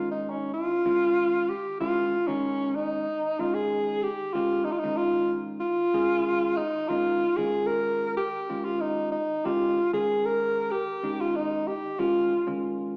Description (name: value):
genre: jazz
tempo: 94 BPM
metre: 4/4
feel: straight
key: Eb mixolydian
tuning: A4 = 439 Hz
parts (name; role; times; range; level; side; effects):
- dark alto saxophone; melody; 0.0-12.5 s; Db4 to Bb4; -28 LUFS; equal; plate reverb
- tine electric piano; accompaniment; 0.0-13.0 s; Eb3 to Ab4; -35 LUFS; equal; plate reverb, slapback echo
room: wet club reverb, RT60 0.6 s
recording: live gig heard through the venue's PA, recital hall reverb, small speaker sound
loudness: -27 LUFS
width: mono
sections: 0.0-13.0 A section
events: none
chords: 0.0 Eb9sus4